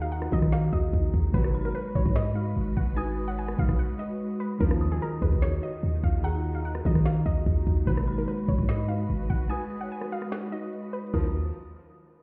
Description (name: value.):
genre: hip hop, trap.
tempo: 147 BPM.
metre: 4/4.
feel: half-time.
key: Eb minor.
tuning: A4 = 440 Hz.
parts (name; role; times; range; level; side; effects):
warbly dusty pluck; melody; 0.0-11.3 s; Ab4 to Ab5; -40 LUFS; equal; chorus, digital delay.
dark detuned synth bell; second line; 0.0-11.3 s; Bb5 to Eb6; -47 LUFS; equal; chorus, digital delay.
glassy digital keys; accompaniment; 0.0-11.3 s; Eb3 to Db5; -36 LUFS; equal; chorus.
clear symphonic string section; sustained chords; 0.0-11.3 s; Eb3 to Cb5; -41 LUFS; equal; none.
warm 808-style bass; bass; 0.0-11.5 s; Ab1 to Eb3; -30 LUFS; equal; none.
trap drum kit; drums; 0.1-11.3 s; crash cymbal, hi-hat, kick drum, rim click, snare drum; -29 LUFS; equal; none.
mellow brass ensemble; stabs; 1.3-1.7, 4.6-5.0, 7.9-8.3, 11.1-11.3 s; Bb1 to Gb3; -37 LUFS; equal; digital delay.
room: little or no reverb.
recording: heard muffled through a wall, stone room reverb, EQ.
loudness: -27 LUFS.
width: mono.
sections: 0.0-11.1 A section; 11.1-12.2 B section.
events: break 3.8-4.6, 9.5-11.1.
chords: 0.0 Ebmadd9; 1.3 Abm7; 4.6 Ebmadd9; 7.9 Abm7; 11.1 Ebmadd9.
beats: 0.12 0.53 0.93 | 1.34 1.75 2.16 2.57 | 2.97 3.38 3.79 4.20 | 4.61 5.01 5.42 5.83 | 6.24 6.65 7.06 7.46 | 7.87 8.28 8.69 9.10 | 9.51 9.91 10.32 10.73 | 11.14.